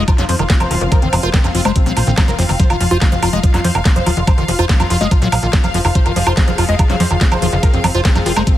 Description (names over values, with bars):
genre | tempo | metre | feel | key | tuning
psychedelic trance | 143 BPM | 4/4 | straight | F minor | A4 = 441 Hz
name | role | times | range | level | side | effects
wide unison lead | melody | 0.0-8.5 s | C4 to F5 | -23 LUFS | equal | phaser, sidechain pumping, tape echo
pulsing gated texture | sustained chords | 0.0-8.6 s | F3 to Ab4 | -26 LUFS | left 2 dB | chorus, built-in reverb, sidechain pumping
liquid acid bass | riff | 0.0-8.5 s | Eb3 to F4 | -21 LUFS | left 1 dB | phaser, auto-pan, sidechain pumping, ping-pong delay
plucky analog bass | bass | 0.0-8.4 s | Eb1 to F2 | -17 LUFS | equal | none
impact | sound effects | 0.0-0.9 s | none | barely audible | none | none
electronic kick drum | drums | 0.1-8.6 s | none | -13 LUFS | equal | studio reverb
garage drum kit | drums | 0.1-8.6 s | hi-hat, snare drum, woodblock | -20 LUFS | right 2 dB | studio reverb
clear studio string section | texture | 0.4-8.6 s | F5 | -26 LUFS | left 3 dB | sidechain pumping
formant-sweep wobble bass | second line | 0.6-1.4, 7.3-8.4 s | Bb3 to C4 | -30 LUFS | right 2 dB | lush chorus, sidechain pumping, high-pass filter, tape echo
room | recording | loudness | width
digital ambience | heavily compressed radio sound, multiband compression | -12 LUFS | side -13 dB against mid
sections
0.0-8.6 A section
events
impact 0.0-0.9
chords
0.0 F5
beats
0.08 0.50 | 0.92 1.34 1.76 2.18 | 2.60 3.02 3.44 3.85 | 4.27 4.69 5.11 5.53 | 5.95 6.37 6.79 7.21 | 7.63 8.05 8.47